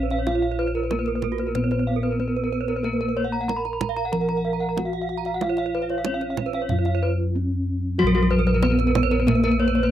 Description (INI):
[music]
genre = Balinese gamelan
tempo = 93 BPM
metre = 4/4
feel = straight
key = Bb pelog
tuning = A4 = 440 Hz
[part]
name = gamelan-type bronze metallophone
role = melody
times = 0.0-9.9 s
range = Gb3-20c to Bb4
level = -25 LUFS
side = equal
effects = none
[part]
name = gamelan-type bronze metallophone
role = arpeggios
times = 0.0-9.8 s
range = Gb4-20c to Bb5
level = -30 LUFS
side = right 14 dB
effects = none
[part]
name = gamelan-type bossed gongs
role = bass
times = 0.0-9.9 s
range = Bb1 to Bb4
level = -26 LUFS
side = left 1 dB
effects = none
[part]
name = gamelan-type bronze metallophone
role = arpeggios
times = 0.1-9.9 s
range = Gb4-20c to Cb6+20c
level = -27 LUFS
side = left 2 dB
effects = none
[part]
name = kendang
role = percussion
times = 0.1-9.5 s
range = none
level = -29 LUFS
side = right 5 dB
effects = none
[sound]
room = light reverb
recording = dry, close 1970s-style studio recording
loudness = -20 LUFS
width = side -11 dB against mid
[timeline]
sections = 0.0-9.9 A section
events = none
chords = none